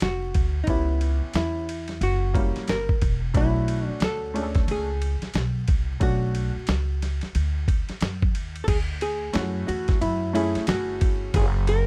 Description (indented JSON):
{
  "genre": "hip hop, jazz-hop",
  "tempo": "90 BPM",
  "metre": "4/4",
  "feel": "swing 62% on 16ths",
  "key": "B dorian",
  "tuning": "A4 = 440 Hz",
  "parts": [
    { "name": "archtop guitar, miked and amplified", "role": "melody", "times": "0.0-11.9 s", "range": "D#4 to A#4", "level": "-31 LUFS", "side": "equal", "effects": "none" },
    { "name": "upright bass", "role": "bass", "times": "0.0-11.9 s", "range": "E1 to F#2", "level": "-29 LUFS", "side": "equal", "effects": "none" },
    { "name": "dusty soul sampler-style drum kit", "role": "drums", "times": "0.0-11.9 s", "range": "crash cymbal, hi-hat, kick drum, ride cymbal, snare drum", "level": "-28 LUFS", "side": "equal", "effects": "none" },
    { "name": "clear upright piano", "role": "accompaniment", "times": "0.7-11.3 s", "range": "G3 to A4", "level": "-33 LUFS", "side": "equal", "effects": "none" }
  ],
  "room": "little or no reverb",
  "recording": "dark, warm production, vinyl crackle",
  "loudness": "-25 LUFS",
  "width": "mono",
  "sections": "0.0-8.7 A section; 8.7-11.9 B section",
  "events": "none",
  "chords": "0.0 N.C.; 0.7 C#m7b5; 2.0 F#7b9; 3.3 Bm9; 8.7 Dmaj9; 11.3 F#"
}